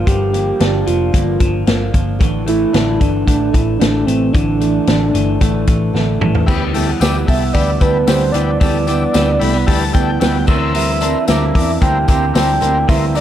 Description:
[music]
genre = jangly indie pop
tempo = 112 BPM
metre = 4/4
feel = straight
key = unclear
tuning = A4 = 440 Hz
[part]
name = soft octave-layered synth lead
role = melody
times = 0.0-13.2 s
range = C4 to G5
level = -18 LUFS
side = right 2 dB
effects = chorus, analog delay
[part]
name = fingerpicked steel-string acoustic guitar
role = accompaniment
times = 0.0-13.2 s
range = G2 to Bb4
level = -22 LUFS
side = right 7 dB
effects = none
[part]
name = electric guitar through a small old amp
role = arpeggios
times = 0.0-13.2 s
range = E3 to G4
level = -22 LUFS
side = left 4 dB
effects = none
[part]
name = vintage muted picked electric bass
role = bass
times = 0.0-13.2 s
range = F1 to E2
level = -19 LUFS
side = equal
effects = none
[part]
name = vintage drum kit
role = drums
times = 0.1-13.2 s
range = crash cymbal, hi-hat, kick drum, snare drum, toms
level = -17 LUFS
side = left 1 dB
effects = none
[part]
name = overdriven combo organ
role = accompaniment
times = 6.5-13.2 s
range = E4 to B5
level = -23 LUFS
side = left 4 dB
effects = none
[part]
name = tambourine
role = percussion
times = 6.5-13.2 s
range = none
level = -34 LUFS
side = left 9 dB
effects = none
[sound]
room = light reverb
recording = dark, warm production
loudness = -12 LUFS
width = side -11 dB against mid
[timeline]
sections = 0.0-6.5 A section; 6.5-13.2 B section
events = drum fill 5.9-6.5; transistor combo organ fill 9.1-10.8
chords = 0.0 Gm7; 2.2 Asus4; 6.5 G6; 10.5 C7/D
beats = | 0.07 0.60 1.14 1.67 | 2.21 2.74 3.27 3.81 | 4.34 4.88 5.41 5.94 | 6.48 7.01 7.55 8.08 | 8.62 9.15 9.68 10.22 | 10.75 11.29 11.82 12.36 | 12.89

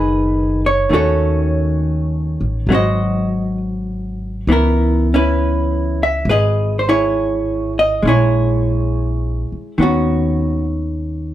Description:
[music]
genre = jazz ballad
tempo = 68 BPM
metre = 4/4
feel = swing 69% on 8ths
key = unclear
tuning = A4 = 440 Hz
[part]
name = vintage hollow-body jazz guitar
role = accompaniment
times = 0.0-11.3 s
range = D#3 to E5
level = -17 LUFS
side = equal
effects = none
[part]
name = upright bass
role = bass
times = 0.0-11.3 s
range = F#1 to D#2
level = -19 LUFS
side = equal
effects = none
[sound]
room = light reverb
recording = none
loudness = -15 LUFS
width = side -12 dB against mid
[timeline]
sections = 0.0-11.3 A section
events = none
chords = 0.0 B69; 0.9 D#m7b5; 2.7 G#7; 4.5 C#m9; 8.0 A#m7b5; 9.8 Badd9/D#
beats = 0.00 | 0.89 1.78 2.67 3.58 | 4.48 5.37 6.25 7.14 | 8.03 8.91 9.78 10.66

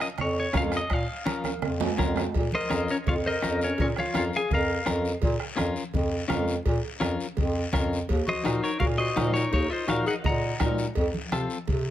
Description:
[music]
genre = latin, cumbia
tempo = 167 BPM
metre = 4/4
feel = straight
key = Bb minor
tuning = A4 = 441 Hz
[part]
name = clean electric guitar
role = melody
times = 0.0-4.9, 8.3-10.6 s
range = Bb4 to Bb5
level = -30 LUFS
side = left 1 dB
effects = spring reverb, slapback echo
[part]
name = clean electric guitar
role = accompaniment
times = 0.0-11.6 s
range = C4 to Bb4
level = -32 LUFS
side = left 5 dB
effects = none
[part]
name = bombo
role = percussion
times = 0.0-11.9 s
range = none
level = -29 LUFS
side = equal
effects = none
[part]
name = guiro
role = percussion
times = 0.0-11.9 s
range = none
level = -41 LUFS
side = left 5 dB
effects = none
[part]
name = breathy bass clarinet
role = bass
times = 0.2-11.9 s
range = Eb2 to C3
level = -28 LUFS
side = right 1 dB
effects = none
[part]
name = congas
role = percussion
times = 0.2-11.9 s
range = none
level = -35 LUFS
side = right 2 dB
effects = none
[part]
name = timbales and cowbell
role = percussion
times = 0.2-11.9 s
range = none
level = -35 LUFS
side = right 6 dB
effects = none
[part]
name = breathy clarinet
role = second line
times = 2.5-4.8, 8.3-10.6 s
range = Db4 to Eb5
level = -32 LUFS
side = left 3 dB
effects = none
[sound]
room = little or no reverb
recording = close, detailed microphones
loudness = -24 LUFS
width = side -12 dB against mid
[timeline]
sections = 0.0-2.4 A section; 2.4-11.9 B section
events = drum fill 1.5-2.4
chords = 0.0 Bbm; 8.1 Ebm; 11.0 F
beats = 0.19 0.55 | 0.91 1.27 1.63 1.99 | 2.35 2.71 3.07 3.43 | 3.79 4.15 4.51 4.87 | 5.22 5.58 5.94 6.30 | 6.66 7.02 7.38 7.74 | 8.09 8.45 8.81 9.17 | 9.53 9.89 10.24 10.60 | 10.96 11.32 11.68

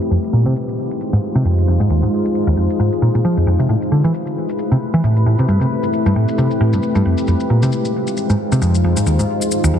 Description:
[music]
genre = breakbeat, breaks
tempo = 134 BPM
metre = 4/4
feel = swing 57% on 16ths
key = unclear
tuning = A4 = 439 Hz
[part]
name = deep dark ambient pad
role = sustained chords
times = 0.0-9.8 s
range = Ab3 to C5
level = -19 LUFS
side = left 1 dB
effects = chorus, built-in reverb
[part]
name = shaker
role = drums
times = 0.0-9.7 s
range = none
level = -30 LUFS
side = left 4 dB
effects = none
[part]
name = hollow-body short-scale picked electric bass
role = riff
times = 0.1-9.8 s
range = Eb2 to F3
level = -15 LUFS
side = equal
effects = vintage 12-bit sampler grit, low-pass filter, tape echo
[sound]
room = moderate digital room reverb, RT60 0.9 s, studio ambience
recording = heavily compressed radio sound, multiband compression, low-pass filter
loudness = -14 LUFS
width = side -9 dB against mid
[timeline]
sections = 0.0-9.8 A section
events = filter sweep on picked electric bass 0.0-9.8; filter sweep 0.0-9.8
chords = 0.0 Fm9; 3.7 Am9; 7.1 Fm9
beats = | 0.11 0.56 1.01 1.45 | 1.90 2.35 2.80 3.25 | 3.69 4.14 4.59 5.04 | 5.48 5.93 6.38 6.83 | 7.28 7.72 8.17 8.62 | 9.07 9.51

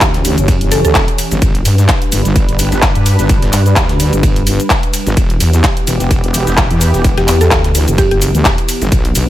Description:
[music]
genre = bass house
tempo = 128 BPM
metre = 4/4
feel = swing 56% on 16ths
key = E dorian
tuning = A4 = 440 Hz
[part]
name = sweeping resonant pad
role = sustained chords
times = 0.0-9.3 s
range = E3 to B4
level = -19 LUFS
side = equal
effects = chorus, sidechain pumping
[part]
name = wobble bass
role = bass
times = 0.0-9.3 s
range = E1 to G2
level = -13 LUFS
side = equal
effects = chorus, tube saturation, sidechain pumping
[part]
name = big-room dance drum kit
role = drums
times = 0.0-9.3 s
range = cabasa, handclaps, hi-hat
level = -17 LUFS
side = left 1 dB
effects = small room reverb
[part]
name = dusty soul sampler-style drum kit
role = drums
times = 0.0-9.3 s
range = ride cymbal, snare drum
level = -26 LUFS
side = right 3 dB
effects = high-pass filter on snare, small room reverb, high-pass filter on cymbals
[part]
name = electronic kick drum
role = drums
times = 0.0-9.0 s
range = none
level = -14 LUFS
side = equal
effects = small room reverb
[part]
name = mallet-like synth pluck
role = melody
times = 0.7-0.9, 7.2-8.2 s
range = G4 to A4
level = -18 LUFS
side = equal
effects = chorus, digital delay
[sound]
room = little or no reverb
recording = none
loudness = -10 LUFS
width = side -13 dB against mid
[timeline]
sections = 0.0-9.3 A section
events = none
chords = 0.0 Em; 1.4 G; 5.2 Em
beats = 0.01 0.48 0.95 | 1.42 1.89 2.36 2.83 | 3.29 3.76 4.23 4.70 | 5.17 5.64 6.11 6.58 | 7.04 7.51 7.98 8.45 | 8.92

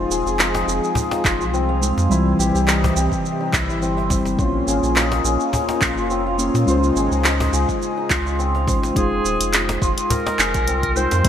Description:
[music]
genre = organic downtempo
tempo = 105 BPM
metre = 4/4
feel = swing 55% on 16ths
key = F minor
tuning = A4 = 440 Hz
[part]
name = muted felt-like synth keys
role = accompaniment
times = 0.0-11.3 s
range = E3 to Db5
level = -24 LUFS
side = left 1 dB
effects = chorus, sidechain pumping, digital delay, shimmer reverb
[part]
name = warm analog pad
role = sustained chords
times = 0.0-8.9 s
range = C3 to Ab4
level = -26 LUFS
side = equal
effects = chorus, vintage 12-bit sampler grit, sidechain pumping, shimmer reverb
[part]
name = santur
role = arpeggios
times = 0.0-11.3 s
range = C4 to F5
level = -23 LUFS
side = left 3 dB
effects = digital delay, shimmer reverb
[part]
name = warm sub bass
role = bass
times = 0.0-11.3 s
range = Eb1 to Bb2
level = -23 LUFS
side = equal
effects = none
[part]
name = deep house drum kit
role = drums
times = 0.1-11.3 s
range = handclaps, hi-hat, shaker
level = -22 LUFS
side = right 1 dB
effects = gated reverb
[part]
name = cajon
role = percussion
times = 0.5-11.2 s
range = none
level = -27 LUFS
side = left 1 dB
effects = none
[part]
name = electronic kick drum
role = drums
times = 1.2-11.3 s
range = none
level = -24 LUFS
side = equal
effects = none
[part]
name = warm clarinet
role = melody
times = 9.0-11.3 s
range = Ab4 to C5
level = -23 LUFS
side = right 1 dB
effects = digital delay, shimmer reverb
[sound]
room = moderate plate reverb, RT60 2.6 s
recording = bright 1980s-style digital production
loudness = -17 LUFS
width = side -9 dB against mid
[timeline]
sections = 0.0-9.0 A section; 9.0-11.3 B section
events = none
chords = 0.0 Fm7; 2.1 C; 4.4 Bbm; 6.7 Dbmaj7; 9.0 Fm7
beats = 0.39 0.96 1.53 | 2.10 2.67 3.25 3.82 | 4.39 4.96 5.53 6.10 | 6.67 7.25 7.82 8.39 | 8.96 9.53 10.10 10.67 | 11.25

